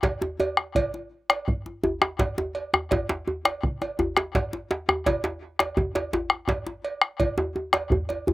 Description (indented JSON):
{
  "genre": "west african traditional, West African drum ensemble",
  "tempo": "112 BPM (dotted quarters)",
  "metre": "12/8",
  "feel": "straight",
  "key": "none",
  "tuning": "none",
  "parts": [
    { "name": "bombo", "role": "percussion", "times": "0.0-8.1 s", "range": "none", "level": "-23 LUFS", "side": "left 1 dB", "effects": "none" },
    { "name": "cowbell", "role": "percussion", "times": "0.0-8.3 s", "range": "none", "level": "-29 LUFS", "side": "right 3 dB", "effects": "none" },
    { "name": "djembe", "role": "percussion", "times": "0.0-8.3 s", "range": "none", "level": "-27 LUFS", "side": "right 1 dB", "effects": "slapback echo" },
    { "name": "djembe", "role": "percussion", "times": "0.2-8.3 s", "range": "none", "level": "-31 LUFS", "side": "left 2 dB", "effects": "none" }
  ],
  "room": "light reverb",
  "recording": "recorded outdoors, with no room sound",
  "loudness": "-24 LUFS",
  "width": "side -17 dB against mid",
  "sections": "0.0-8.3 A section",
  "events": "none",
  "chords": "none",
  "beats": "0.21 | 0.76 1.30 1.84 2.38 | 2.92 3.46 4.00 4.53 | 5.07 5.61 6.14 6.67 | 7.21 7.74 8.28"
}